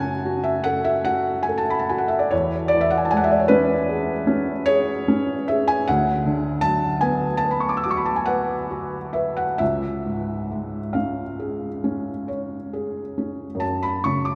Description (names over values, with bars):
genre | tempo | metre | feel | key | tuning
classical, romantic nocturne for solo piano | 44-54 BPM (dotted quarters) | 9/8 | rubato | unclear | A4 = 440 Hz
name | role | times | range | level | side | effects
felt-muted upright piano | solo | 0.0-14.3 s | C#2 to E6 | -22 LUFS | equal | none
room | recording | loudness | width
wet cathedral reverb, RT60 5.4 s | in a vast, echoing space | -23 LUFS | mono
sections
0.0-14.3 A section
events
none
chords
0.0 F#m; 2.3 C#m/E; 5.9 Bm/D; 9.6 C#; 13.6 F#m